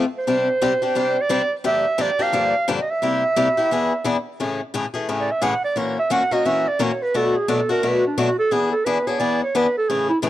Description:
jazz; 174 BPM; 4/4; swing 60% on 8ths; A major from 4.4 s; A4 = 435 Hz
picked swing-style acoustic guitar; accompaniment; 0.0-10.3 s; G2 to A#4; -22 LUFS; left 4 dB
breathy clarinet; melody; 0.2-10.2 s; D4 to F#5; -20 LUFS; right 2 dB
small room ambience; dry, close 1970s-style studio recording; -18 LUFS; side -13 dB against mid
0.0-4.4 A section; 4.4-10.3 B section
clarinet solo 4.4-10.3
0.3 Csus2; 1.6 Gm7; 3.0 C7; 3.7 E7; 4.4 Amaj7; 5.8 F#7/A#; 7.1 Bm7; 8.5 E7

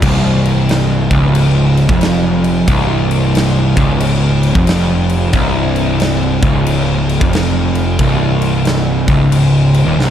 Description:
stoner and doom metal; 90 BPM; 4/4; swing 64% on 8ths; A4 = 439 Hz
fuzz guitar; riff; 0.0-10.1 s; C2 to F2; -12 LUFS; equal; distortion
fuzz picked electric bass; bass; 0.0-10.1 s; C1 to F1; -18 LUFS; equal; overdrive
big rock drum kit; drums; 0.0-10.1 s; crash cymbal, kick drum, snare drum; -18 LUFS; equal
small room ambience; dark, warm production; -10 LUFS; side -10 dB against mid
0.0-10.1 A section

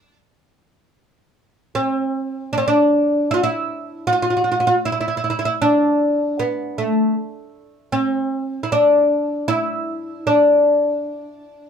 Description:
arabic; 78 BPM; 4/4; straight; D maqam rast; A4 = 439 Hz
oud; solo; 0.0-11.7 s; A3 to F#4-50c; -16 LUFS; equal
light reverb; band playing live in one room; -16 LUFS; side -7 dB against mid
1.0-11.7 A section

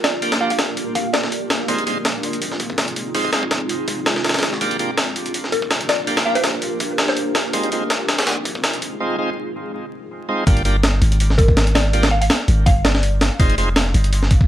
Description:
drum and bass, jungle; 164 BPM; 4/4; swing 54% on 16ths; G phrygian; A4 = 440 Hz
mallet-like synth pluck; melody; 0.0-1.4, 5.5-7.4, 11.4-13.1 s; Bb4 to F5; -25 LUFS; equal; wide subtle chorus, dub echo
breakbeat sampler-style drum kit; drums; 0.0-14.5 s; hi-hat, kick drum, snare drum; -19 LUFS; equal; high-pass filter on hats, high-pass filter on snare, high-pass filter on kick
bright tonewheel organ; stabs; 0.2-13.7 s; Ab3 to G4; -26 LUFS; right 1 dB; overdrive, slow rotary speaker, low-pass filter, dub echo
long sustained 808-style bass; bass; 10.5-14.5 s; F1 to Ab1; -17 LUFS; equal
light reverb; vinyl crackle; -16 LUFS; side -12 dB against mid
0.0-10.5 A section; 10.5-14.5 B section
build-up 0.0-10.5; filter sweep on tonewheel organ 0.0-10.5; break 9.0-10.5; drop 10.5-14.5
0.0 Gm7; 1.7 Fm7; 4.6 Gm7; 7.5 Fm7; 10.5 Gm7; 13.4 Fm7

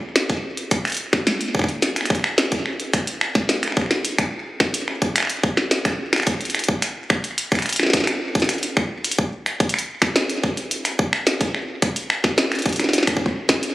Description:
IDM; 108 BPM; 4/4; straight
glitchy drum kit; drums; 0.2-13.7 s; finger snaps, hi-hat, snare drum; -20 LUFS; equal; digital delay
electronic kick drum; drums; 0.3-13.6 s; -21 LUFS; equal
wet lush hall reverb, RT60 2.5 s; recorded on a phone in the room, studio reverb, compression; -19 LUFS; side -17 dB against mid
0.0-13.7 A section

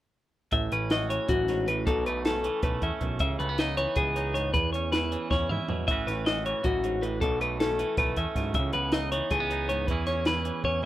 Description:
math rock and midwest emo; 314 BPM (eighths); 7/8; straight; A4 = 437 Hz
twangy electric guitar; accompaniment; 0.5-10.9 s; E2 to B4; -33 LUFS; right 8 dB; warbly pitch drift
clean electric guitar; arpeggios; 0.5-10.8 s; F#4 to E5; -28 LUFS; left 2 dB; tape echo
growling picked electric bass; bass; 0.5-10.8 s; A1 to G#2; -33 LUFS; equal; overdrive
compact cocktail drum kit; drums; 0.5-10.9 s; hi-hat, kick drum, snare drum, toms; -30 LUFS; equal
light reverb; rough home demo mix; -25 LUFS; side -14 dB against mid
0.5-10.9 A section
drum fill 5.3-5.9, 10.7
0.5 A69; 1.9 B9sus4; 3.2 C#m9; 4.5 E5; 5.9 A69; 7.2 B9sus4; 8.6 C#m9; 9.9 E6

